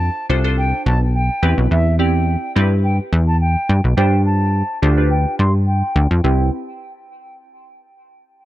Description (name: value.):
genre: dance-pop.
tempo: 106 BPM.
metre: 4/4.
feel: straight.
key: C major.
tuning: A4 = 441 Hz.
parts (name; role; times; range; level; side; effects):
mellow concert flute; melody; 0.0-6.5 s; E5 to C6; -24 LUFS; equal; low-pass filter, dub echo.
glassy wavetable pluck; accompaniment; 0.0-6.5 s; C4 to D5; -23 LUFS; right 2 dB; chorus, low-pass filter.
plucky analog bass; bass; 0.0-6.5 s; B1 to G2; -15 LUFS; equal; none.
room: studio reverb.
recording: none.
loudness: -14 LUFS.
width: side -15 dB against mid.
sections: 0.0-6.2 A section; 6.2-8.4 B section.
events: filter sweep 0.0-6.2.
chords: 0.0 F6; 1.4 Cmaj7; 4.0 G7sus4; 6.2 Cmaj7.